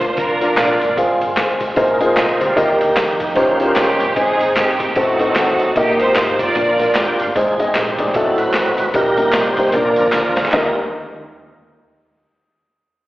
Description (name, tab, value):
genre	uptempo gospel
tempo	151 BPM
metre	4/4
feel	swing 60% on 8ths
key	Eb major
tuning	A4 = 440 Hz
part	warm studio string section	melody	0.0-1.0, 3.8-7.2 s	Bb3 to D5	-18 LUFS	right 1 dB	slapback echo
part	tonewheel organ	sustained chords	0.0-10.8 s	F3 to G5	-20 LUFS	right 1 dB	fast rotary speaker, chorus vibrato
part	hollow-body short-scale fingered electric bass	bass	0.0-10.7 s	F1 to F2	-33 LUFS	equal	none
part	boom bap sampler-style drum kit	drums	0.0-10.6 s	hi-hat, kick drum, snare drum	-23 LUFS	equal	slapback echo
part	tambourine and handclaps	percussion	0.0-10.7 s	none	-24 LUFS	equal	none
part	dark upright piano	accompaniment	0.4-10.8 s	Eb2 to F5	-17 LUFS	left 1 dB	slapback echo
part	clean electric guitar	second line	3.2-4.1 s	Eb4 to C5	-24 LUFS	right 3 dB	spring reverb, slapback echo
room	moderate digital room reverb, RT60 1.0 s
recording	live gig heard through the venue's PA, recital hall reverb, telephone sound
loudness	-13 LUFS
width	side -17 dB against mid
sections	0.0-7.4 A section; 7.4-10.5 B section; 10.5-12.1 C section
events	tonewheel organ fill 6.8-7.4; tonewheel organ solo 7.4-10.5; drum fill 10.1-10.5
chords	0.0 Bb; 1.0 Fm; 1.8 Bb9sus4; 2.6 Eb; 3.4 Eb13; 4.2 Ab; 5.0 Adim7; 5.8 Eb; 6.6 Bb; 7.4 Ab; 8.1 Adim7; 8.9 Eb/Bb; 9.7 Bb; 10.5 Eb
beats	0.18 0.58 | 0.98 1.38 1.77 2.17 | 2.57 2.97 3.37 3.77 | 4.17 4.57 4.96 5.36 | 5.76 6.16 6.56 6.95 | 7.35 7.75 8.14 8.54 | 8.94 9.34 9.73 10.13 | 10.53